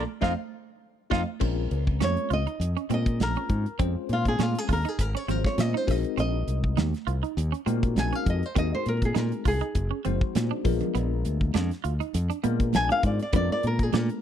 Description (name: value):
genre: electric jazz fusion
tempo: 101 BPM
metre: 4/4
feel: swing 54% on 16ths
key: Bb minor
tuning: A4 = 441 Hz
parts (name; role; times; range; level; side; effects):
- flamenco guitar; melody; 0.0-14.2 s; F4 to Ab5; -29 LUFS; equal; slapback echo
- bell-like tine electric piano; accompaniment; 0.0-14.2 s; Ab3 to C5; -32 LUFS; left 13 dB; medium stereo tremolo, phaser
- clean electric guitar; stabs; 0.0-14.1 s; Cb4 to F4; -34 LUFS; right 15 dB; analog chorus
- modern bright fingered electric bass; bass; 0.0-14.1 s; Gb1 to Bb2; -27 LUFS; equal; none
- damped 70s drum kit; drums; 0.2-14.2 s; crash cymbal, hi-hat, kick drum, snare drum; -28 LUFS; equal; none
- congas; percussion; 0.2-14.1 s; none; -34 LUFS; right 19 dB; none
room: small room ambience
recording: dry, close 1970s-style studio recording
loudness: -24 LUFS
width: side -10 dB against mid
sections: 0.0-1.4 A section; 1.4-14.2 B section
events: band accent 0.0-1.4; drum fill 1.1, 10.5-10.9; nylon-string guitar solo 1.4-14.2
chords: 0.2 F5; 1.4 Bbm9; 5.9 Ab7/Bb; 10.7 Bb7b9